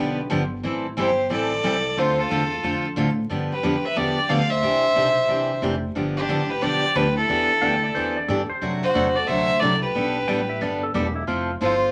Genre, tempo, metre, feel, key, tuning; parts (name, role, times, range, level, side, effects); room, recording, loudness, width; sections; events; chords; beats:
country; 180 BPM; 4/4; swing 64% on 8ths; A4 = 440 Hz
clear fiddle; melody; 0.0-11.9 s; G4 to F5; -25 LUFS; equal
bright fiddle; second line; 0.0-11.9 s; D4 to D5; -31 LUFS; equal
picked steel-string acoustic guitar; accompaniment; 0.0-11.7 s; C3 to A4; -27 LUFS; equal
upright bass; bass; 0.0-11.9 s; E1 to A2; -33 LUFS; equal
clean lap steel guitar; second line; 7.6-11.5 s; E4 to G5; -31 LUFS; equal
wet club reverb, RT60 0.7 s; vinyl crackle; -22 LUFS; mono
0.0-11.9 A section
0.0 G7; 0.6 Am7; 2.0 Dm7; 3.3 G7; 4.6 Cadd9; 6.0 G7; 7.3 Em7; 8.6 D7; 9.9 Gadd9; 11.3 Fmaj7
0.31 | 0.64 0.97 1.31 1.64 | 1.97 2.30 2.63 2.97 | 3.30 3.63 3.96 4.30 | 4.63 4.96 5.29 5.63 | 5.96 6.29 6.62 6.96 | 7.29 7.62 7.95 8.29 | 8.62 8.95 9.28 9.62 | 9.95 10.28 10.62 10.95 | 11.28 11.62